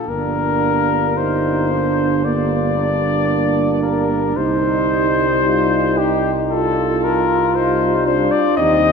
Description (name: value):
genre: classical, hymn-like piece for brass band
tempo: 54-59 BPM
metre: 4/4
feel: rubato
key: unclear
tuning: A4 = 441 Hz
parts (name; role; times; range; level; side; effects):
- warm cornet; melody; 0.0-8.9 s; G4 to Eb5; -19 LUFS; left 6 dB; none
- warm euphonium; accompaniment; 0.0-8.9 s; Bb3 to Eb4; -24 LUFS; left 3 dB; none
- mellow French horn section; second line; 0.1-8.9 s; Bb3 to F4; -20 LUFS; right 6 dB; none
- mellow trombone; accompaniment; 0.1-8.9 s; G3; -26 LUFS; right 7 dB; none
- dark tuba; bass; 0.1-8.9 s; G1 to Eb2; -23 LUFS; equal; none
room: wet church reverb, RT60 3.5 s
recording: none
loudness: -15 LUFS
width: side -5 dB against mid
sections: 0.1-8.9 A section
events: none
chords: 0.1 Gm; 4.4 Cm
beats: | 0.08 1.17 2.25 3.30 | 4.36 5.46 6.52 7.56 | 8.57